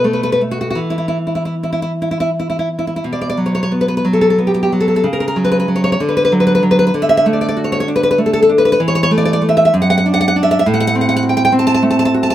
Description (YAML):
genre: romantic piece for solo classical guitar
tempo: 52-68 BPM (dotted quarters)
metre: 6/8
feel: rubato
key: B minor from 3.0 s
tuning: A4 = 441 Hz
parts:
  - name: nylon-string guitar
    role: solo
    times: 0.0-12.3 s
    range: F#2 to A5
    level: -12 LUFS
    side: equal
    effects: none
room: light reverb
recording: band playing live in one room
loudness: -12 LUFS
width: side -12 dB against mid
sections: 0.0-3.0 A section; 3.0-12.3 B section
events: none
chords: 0.0 F#madd11/B; 0.8 N.C.; 3.0 B5; 5.0 F#5/C#; 6.0 D6; 6.9 D; 8.8 A5/E; 9.7 D/F#; 10.6 F#dim/A